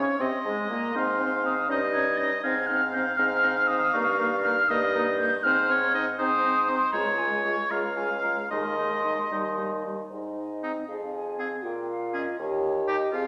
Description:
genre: quick classical-period movement for wind quintet.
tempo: 80 BPM (dotted quarters).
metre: 6/8.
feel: rubato.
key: Ab major.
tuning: A4 = 440 Hz.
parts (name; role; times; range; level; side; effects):
mellow hollow silver concert flute; melody; 0.0-13.3 s; C5 to Bb6; -30 LUFS; equal; none.
clear oboe; second line; 0.0-13.3 s; Eb4 to F5; -31 LUFS; equal; none.
mellow clarinet; accompaniment; 0.0-13.3 s; Ab3 to F4; -39 LUFS; equal; none.
warm French horn; accompaniment; 0.0-13.3 s; G3 to Ab4; -35 LUFS; equal; none.
warm bassoon; bass; 0.0-13.3 s; Db2 to C3; -33 LUFS; equal; none.
room: wet recital hall reverb, RT60 1.7 s.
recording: none.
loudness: -26 LUFS.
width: mono.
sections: 0.0-10.1 A section; 10.1-13.3 B section.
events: none.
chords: 0.0 Eb5; 1.0 Ab; 1.7 Eb7/G; 2.4 Ab; 3.9 Eb7/G; 5.4 Ab; 6.9 Db; 8.5 Ab/Eb; 9.3 Eb; 10.1 Ab5; 10.9 Fm; 11.6 Bbm; 12.4 Eb7.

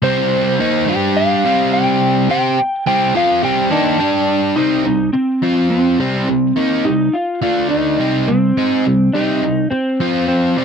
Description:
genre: rock.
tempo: 105 BPM.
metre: 4/4.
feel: straight.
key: C dorian.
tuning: A4 = 440 Hz.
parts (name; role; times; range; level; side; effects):
electric slide guitar; melody; 0.0-10.6 s; C4 to G5; -17 LUFS; equal; none.
overdriven electric guitar; riff; 0.0-10.6 s; C3 to C5; -16 LUFS; equal; none.
room: moderate booth ambience, RT60 0.2 s.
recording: dry, close 1970s-style studio recording.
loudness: -13 LUFS.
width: side -6 dB against mid.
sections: 0.0-4.6 A section; 4.6-10.6 B section.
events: none.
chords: 0.0 Cm; 0.9 G5; 1.4 Cm; 4.0 G5; 4.6 C5; 5.4 F5; 6.0 Cm; 7.4 D5; 8.0 Cm; 10.0 F5.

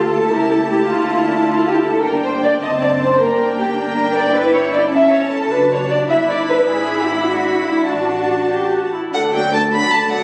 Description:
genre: quick classical-period movement for string orchestra.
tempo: 103 BPM (dotted quarters).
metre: 6/8.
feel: rubato.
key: D minor, D major from 4.3 s.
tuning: A4 = 440 Hz.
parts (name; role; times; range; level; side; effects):
warm chamber violin section; melody; 0.0-10.2 s; F#5 to B5; -26 LUFS; equal; none.
warm studio viola section; accompaniment; 0.0-10.2 s; F#3 to A4; -25 LUFS; equal; none.
warm studio cello section; bass; 0.0-10.2 s; D2 to F#4; -23 LUFS; equal; none.
warm studio double bass section; bass; 0.0-10.2 s; F#1 to D2; -31 LUFS; equal; none.
dark studio violin section; second line; 0.1-10.2 s; D4 to E5; -20 LUFS; equal; none.
room: wet recital hall reverb, RT60 1.4 s.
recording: recorded on a phone in the room, studio reverb, compression.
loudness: -16 LUFS.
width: mono.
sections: 0.0-9.1 A section; 9.1-10.2 B section.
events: none.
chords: 0.3 A7/C#; 0.9 Dm; 2.0 Gm; 2.6 D7/F#; 3.2 Gm; 4.3 Em7/G; 4.9 A7/G; 5.5 D/F#; 6.1 Em7/G; 6.7 E7/G#; 7.9 D/A; 8.5 A5; 9.1 D.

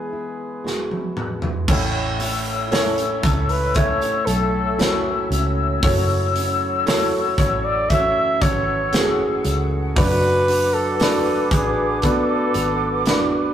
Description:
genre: pop ballad.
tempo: 58 BPM.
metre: 4/4.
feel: straight.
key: A major.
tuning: A4 = 441 Hz.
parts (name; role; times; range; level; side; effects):
warm flugelhorn; melody; 0.0-13.5 s; G#4 to E5; -23 LUFS; right 1 dB; none.
clear concert grand piano; accompaniment; 0.0-13.5 s; E2 to E5; -25 LUFS; right 1 dB; none.
fingerpicked plugged-in steel-string acoustic guitar; arpeggios; 0.0-13.5 s; F#2 to A4; -28 LUFS; right 1 dB; none.
modern studio drum kit; drums; 0.7-13.3 s; crash cymbal, hi-hat, kick drum, snare drum, toms; -22 LUFS; equal; none.
mellow hollow small flute group; sustained chords; 1.7-13.5 s; B4 to E6; -24 LUFS; left 3 dB; none.
vintage muted fingered electric bass; bass; 1.7-13.5 s; F#1 to C#2; -25 LUFS; equal; none.
room: wet studio reverb, RT60 0.6 s.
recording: rough rehearsal-room recording.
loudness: -17 LUFS.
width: side -10 dB against mid.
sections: 0.0-1.7 A section; 1.7-13.5 B section.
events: drum fill 0.7-1.7.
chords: 0.0 E; 1.7 A; 5.8 F#m7; 10.0 Bm7/F#.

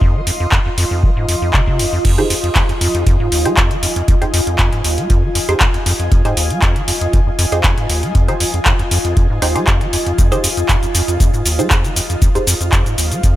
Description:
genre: acid house.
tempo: 118 BPM.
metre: 4/4.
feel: straight.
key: F minor.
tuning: A4 = 440 Hz.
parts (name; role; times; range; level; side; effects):
acid bass, square; riff; 0.0-13.4 s; Eb2 to Ab3; -19 LUFS; equal; tube saturation.
electronic kick drum; drums; 0.0-13.3 s; none; -15 LUFS; equal; none.
granular cloud pad; texture; 0.0-13.4 s; F4 to C6; -22 LUFS; equal; built-in reverb, sidechain pumping.
booming analog drum machine; drums; 0.3-13.3 s; cabasa, crash cymbal, handclaps, hi-hat; -18 LUFS; equal; none.
filtered dub chord stab; stabs; 2.2-12.5 s; Eb4 to C5; -23 LUFS; right 2 dB; phaser, cassette tape, dub echo.
room: light reverb.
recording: none.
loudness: -12 LUFS.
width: side -14 dB against mid.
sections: 0.0-13.4 A section.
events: filter sweep on acid bass 0.0-13.4.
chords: 0.0 Fm7.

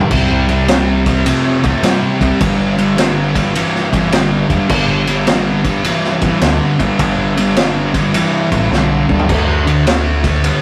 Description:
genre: blues rock power trio and southern rock.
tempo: 105 BPM.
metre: 4/4.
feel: swing 66% on 8ths.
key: unclear.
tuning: A4 = 441 Hz.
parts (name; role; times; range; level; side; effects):
thick fuzz guitar; riff; 0.0-10.6 s; G2 to B3; -17 LUFS; equal; distortion.
vintage drum kit; drums; 0.0-10.6 s; crash cymbal, kick drum, ride cymbal, snare drum, toms; -19 LUFS; equal; none.
growling picked electric bass; bass; 0.1-10.5 s; E1 to G2; -22 LUFS; equal; overdrive.
room: light reverb.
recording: rough rehearsal-room recording, warm saturation.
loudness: -14 LUFS.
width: mono.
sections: 0.0-10.6 A section.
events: drum fill 8.7-9.3.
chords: 0.1 C5; 2.4 G5; 9.3 D5.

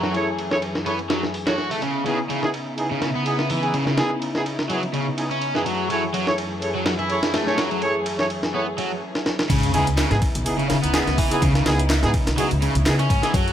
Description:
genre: breakbeat, breaks.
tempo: 125 BPM.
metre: 4/4.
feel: swing 55% on 16ths.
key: C# minor.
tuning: A4 = 439 Hz.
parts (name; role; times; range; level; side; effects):
dark studio string section; sustained chords; 0.0-13.5 s; F#2 to A4; -28 LUFS; left 1 dB; sidechain pumping, low-pass filter.
crunchy overdriven guitar; riff; 0.0-13.5 s; C#3 to F#4; -25 LUFS; equal; tape echo.
breakbeat sampler-style drum kit; drums; 0.0-13.5 s; crash cymbal, hi-hat, kick drum, ride cymbal, snare drum; -25 LUFS; equal; low-pass filter on cymbals, small room ambience, low-pass filter on snare, low-pass filter on hats, low-pass filter on kick.
warm brass ensemble; stabs; 0.1-13.3 s; B3 to C#5; -26 LUFS; right 1 dB; tape echo.
swell and sub drop; sound effects; 8.8-11.4 s; none; -31 LUFS; equal; none.
upright bass; bass; 9.5-13.5 s; B1 to C#3; -22 LUFS; equal; none.
punchy analog drum machine; drums; 9.5-13.5 s; handclaps, hi-hat; -32 LUFS; equal; overdrive, small room ambience.
room: light reverb.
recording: none.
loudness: -19 LUFS.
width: side -10 dB against mid.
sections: 0.0-9.5 A section; 9.5-13.5 B section.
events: swell 8.8-9.5; drum fill 9.1-9.5; drop 9.5-13.5; impact 9.5-11.4.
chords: 0.0 F#m9; 1.8 C#m9; 5.7 F#m9; 9.5 C#m9.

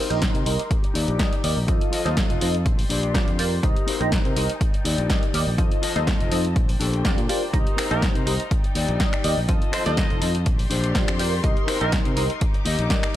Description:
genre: filtered disco house.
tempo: 123 BPM.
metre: 4/4.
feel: swing 53% on 16ths.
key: C dorian.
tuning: A4 = 440 Hz.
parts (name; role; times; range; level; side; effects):
funky polysynth comp; accompaniment; 0.0-13.1 s; Eb4 to Eb5; -28 LUFS; right 1 dB; chorus, phaser, cassette tape, sidechain pumping, low-pass filter.
clear studio string section; sustained chords; 0.0-13.2 s; D4 to Eb6; -34 LUFS; left 2 dB; vintage 12-bit sampler grit, sidechain pumping, low-pass filter.
mellow electric guitar; riff; 0.0-13.2 s; D4 to F5; -30 LUFS; left 5 dB; vintage 12-bit sampler grit, sidechain pumping, low-pass filter.
overdriven fingered electric bass; bass; 0.1-12.9 s; F1 to C3; -25 LUFS; equal; sidechain pumping, low-pass filter.
punchy analog drum machine; drums; 0.1-13.1 s; finger snaps, hi-hat, snare drum; -28 LUFS; equal; sidechain pumping on hats, sidechain pumping on cymbals.
electronic kick drum; drums; 0.2-13.0 s; none; -23 LUFS; equal; none.
warm horn section; melody; 7.9-12.0 s; Bb3 to Eb5; -32 LUFS; right 1 dB; sidechain pumping, low-pass filter, tape echo.
room: little or no reverb.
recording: none.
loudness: -20 LUFS.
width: side -13 dB against mid.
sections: 0.0-13.2 A section.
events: filter sweep 0.0-13.2.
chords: 0.0 Cm7; 0.7 Ebmaj7; 1.7 F7; 2.7 Bb69; 3.6 Cm7; 4.6 Ebmaj7; 5.6 F7; 6.6 Bb69; 7.5 Cm7; 8.5 Ebmaj7; 9.5 F7; 10.5 Bb69; 11.4 Cm7; 12.4 Ebmaj7.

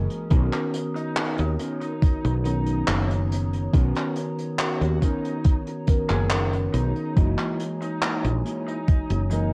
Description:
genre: vaporwave.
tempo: 70 BPM.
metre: 4/4.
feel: straight.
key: B major.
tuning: A4 = 442 Hz.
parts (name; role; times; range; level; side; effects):
mellow tine electric piano; accompaniment; 0.0-9.5 s; D#3 to A#5; -32 LUFS; equal; subtle chorus.
warbly tape-like pad; sustained chords; 0.0-9.5 s; G#4 to D#6; -43 LUFS; equal; chorus, built-in reverb.
woody fretless electric bass; bass; 0.0-9.5 s; F#1 to D#2; -26 LUFS; equal; tube saturation.
unplugged drum kit; drums; 0.1-9.5 s; handclaps, hi-hat; -32 LUFS; equal; gated reverb.
mellow electric guitar; riff; 0.3-9.3 s; A#3 to C#5; -37 LUFS; equal; subtle chorus, analog delay.
electronic kick drum; drums; 0.3-9.1 s; none; -22 LUFS; equal; overdrive.
lead guitar through a small cranked amp; melody; 1.0-9.5 s; D#4 to G#4; -37 LUFS; equal; overdrive, vintage 12-bit sampler grit, tape echo.
room: little or no reverb.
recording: cassette tape.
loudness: -24 LUFS.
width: mono.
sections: 0.0-9.5 A section.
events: none.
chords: 0.3 Bmaj9; 7.2 F#13.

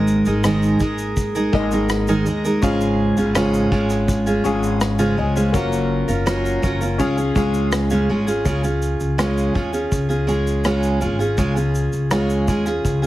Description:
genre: acoustic pop.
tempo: 82 BPM.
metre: 4/4.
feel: straight.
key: Db major.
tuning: A4 = 440 Hz.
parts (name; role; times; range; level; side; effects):
picked steel-string acoustic guitar; accompaniment; 0.0-13.1 s; Ab2 to Bb4; -19 LUFS; right 1 dB; none.
warm upright piano; accompaniment; 0.0-8.5 s; Bb3 to Ab5; -27 LUFS; left 6 dB; none.
upright bass; bass; 0.0-13.1 s; Gb1 to Eb2; -23 LUFS; equal; none.
unplugged drum kit; drums; 0.1-13.1 s; kick drum, rim click, shaker; -24 LUFS; equal; none.
room: little or no reverb.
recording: heavily compressed radio sound, multiband compression.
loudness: -17 LUFS.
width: side -15 dB against mid.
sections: 0.0-8.5 A section; 8.5-13.1 B section.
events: none.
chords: 0.0 Absus2; 2.6 Db/Ab; 5.5 Gbmaj7; 7.0 Db.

